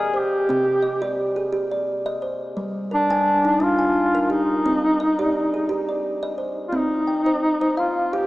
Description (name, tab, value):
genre	world meditative, meditative tuned percussion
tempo	86 BPM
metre	3/4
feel	swing 54% on 16ths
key	C minor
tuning	A4 = 440 Hz
part	mellow duduk	melody	0.0-8.3 s	D4 to Ab4	-21 LUFS	equal	tape echo
part	kalimba	arpeggios	0.0-8.3 s	C3 to Ab5	-23 LUFS	equal	none
room	wet plate reverb, RT60 3.6 s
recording	dreamy mix soaked in reverb, small speaker sound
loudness	-19 LUFS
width	side -18 dB against mid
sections	0.0-6.7 A section; 6.7-8.3 B section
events	none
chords	0.0 Cm; 2.6 Gm; 4.7 Cm